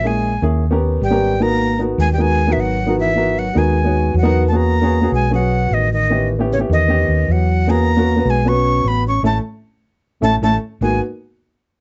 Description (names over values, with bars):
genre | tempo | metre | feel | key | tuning
jazz | 153 BPM | 4/4 | straight | G# minor | A4 = 439 Hz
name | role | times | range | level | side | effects
breathy bright jazz flute | melody | 0.0-11.0 s | C#5 to C#6 | -23 LUFS | equal | none
breathy trombone | second line | 0.0-11.0 s | C#3 to C#4 | -25 LUFS | equal | none
warm baby grand piano | accompaniment | 0.0-11.0 s | A3 to C#5 | -22 LUFS | equal | none
hollow-body short-scale fingered electric bass | bass | 0.0-11.0 s | G#1 to E2 | -20 LUFS | equal | none
room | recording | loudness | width
moderate club ambience, RT60 0.5 s | nothing above 7.8 kHz | -17 LUFS | mono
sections
0.0-4.5 A section; 4.5-10.8 B section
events
band accent 9.2-10.8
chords
0.0 A#m7b5; 0.6 D#7b13; 1.4 G#m9; 4.5 E6; 6.1 A7; 7.7 E6; 9.2 A; 10.8 G#m9